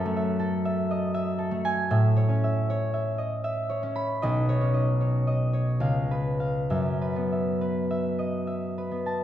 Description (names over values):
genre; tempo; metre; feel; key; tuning
classical, solo harp piece; 65-82 BPM; 3/4; rubato; F# dorian; A4 = 440 Hz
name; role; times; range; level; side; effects
concert harp; solo; 0.0-9.2 s; B1 to B5; -24 LUFS; equal; none
room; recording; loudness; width
wet recital hall reverb, RT60 1.4 s; heard from further back in the room; -24 LUFS; side -11 dB against mid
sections
0.0-9.2 A section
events
none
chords
0.0 F#m9; 1.9 A; 4.2 Badd9; 5.8 C#7; 6.7 F#7(no3)